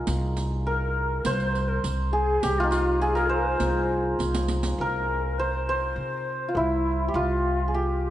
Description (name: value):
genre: Persian modal ensemble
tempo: 102 BPM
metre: 4/4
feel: straight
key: C dastgah shur, C dastgah homayun from 4.8 s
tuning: A4 = 442 Hz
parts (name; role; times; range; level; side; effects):
- santur; melody; 0.0-8.1 s; Eb4 to C5; -26 LUFS; right 1 dB; none
- upright bass; bass; 0.0-8.1 s; C2 to C3; -27 LUFS; equal; none
- riq; percussion; 0.1-4.8 s; none; -34 LUFS; right 3 dB; none
- breathy ney; second line; 0.7-8.1 s; E4 to C5; -31 LUFS; left 4 dB; none
room: moderate recital hall reverb, RT60 1.4 s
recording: nothing above 10.7 kHz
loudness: -23 LUFS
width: side -13 dB against mid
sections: 0.0-4.8 A section; 4.8-8.1 B section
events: drum fill 4.2-4.8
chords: none